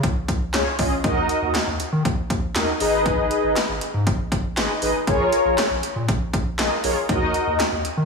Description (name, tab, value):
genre	synth-pop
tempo	119 BPM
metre	4/4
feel	straight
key	Eb minor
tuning	A4 = 440 Hz
part	round analog bass	bass	0.0-8.1 s	Ab1 to Eb3	-26 LUFS	equal	none
part	punchy analog drum machine	drums	0.0-8.0 s	handclaps, hi-hat, kick drum, snare drum	-23 LUFS	equal	overdrive
part	mellow synth brass	accompaniment	0.5-7.6 s	Db4 to Eb5	-22 LUFS	left 1 dB	chorus, slapback echo
room	wet lush hall reverb, RT60 1.9 s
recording	big arena sound, studio reverb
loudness	-19 LUFS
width	side -4 dB against mid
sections	0.0-8.1 A section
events	none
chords	0.0 Db; 1.0 Ebm; 2.8 Abm; 5.1 Bbm7; 7.1 Ebm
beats	0.03 0.54 | 1.04 1.54 2.05 2.55 | 3.06 3.56 4.07 4.57 | 5.08 5.58 6.08 6.59 | 7.09 7.60